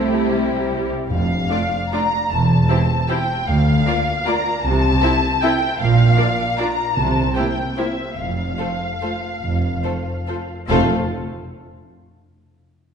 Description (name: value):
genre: classical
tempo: 137-166 BPM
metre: 3/4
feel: rubato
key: F major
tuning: A4 = 442 Hz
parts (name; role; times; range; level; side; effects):
- muted symphonic violin section; melody; 0.0-10.9 s; C5 to Bb5; -23 LUFS; left 2 dB; none
- muted symphonic violin section; second line; 0.0-10.9 s; E4 to E5; -27 LUFS; left 3 dB; none
- muted symphonic viola section; accompaniment; 0.0-10.9 s; G3 to F4; -25 LUFS; right 1 dB; none
- muted symphonic cello section; bass; 0.0-10.9 s; D2 to C3; -24 LUFS; right 1 dB; none
- muted symphonic double bass section; bass; 0.0-10.9 s; E1 to D2; -22 LUFS; right 2 dB; none
- timpani; percussion; 1.1-1.7, 7.0-7.5, 10.7-10.9 s; F2 to C3; -30 LUFS; equal; none
room: wet recital hall reverb, RT60 1.8 s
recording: recorded in a church or concert hall, nothing above 10.7 kHz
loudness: -17 LUFS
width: side -7 dB against mid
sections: 0.0-10.7 A section; 10.7-11.9 B section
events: none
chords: 0.0 C; 1.1 Dm/F; 2.3 C/E; 3.5 Bb/D; 4.6 Am/C; 5.8 Bb; 7.0 C7; 8.2 F